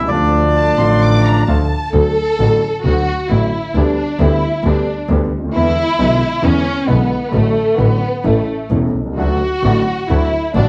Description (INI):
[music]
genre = tango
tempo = 132 BPM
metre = 4/4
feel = rubato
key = D major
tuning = A4 = 442 Hz
[part]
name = bandoneon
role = melody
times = 0.0-1.4 s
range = D4 to D5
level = -18 LUFS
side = equal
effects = none
[part]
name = warm grand piano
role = accompaniment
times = 0.0-10.7 s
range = E1 to G4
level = -21 LUFS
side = equal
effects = none
[part]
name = warm double bass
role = bass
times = 0.0-10.7 s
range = E1 to E2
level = -19 LUFS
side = equal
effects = none
[part]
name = bandoneon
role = stabs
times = 0.1-1.7, 9.2-10.7 s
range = A3 to F#4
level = -29 LUFS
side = equal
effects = none
[part]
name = warm studio violin section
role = second line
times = 0.6-10.7 s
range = A3 to D6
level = -20 LUFS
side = equal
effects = none
[sound]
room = moderate large studio reverb, RT60 0.8 s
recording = worn, warbling old tape, cassette tape, warbly pitch drift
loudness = -15 LUFS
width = mono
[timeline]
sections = 0.0-1.9 A section; 1.9-10.7 B section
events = violin section solo 1.9-10.7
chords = 0.1 Dm; 1.9 D; 3.8 G/D; 5.5 E7; 7.4 D/A; 8.3 A; 9.2 D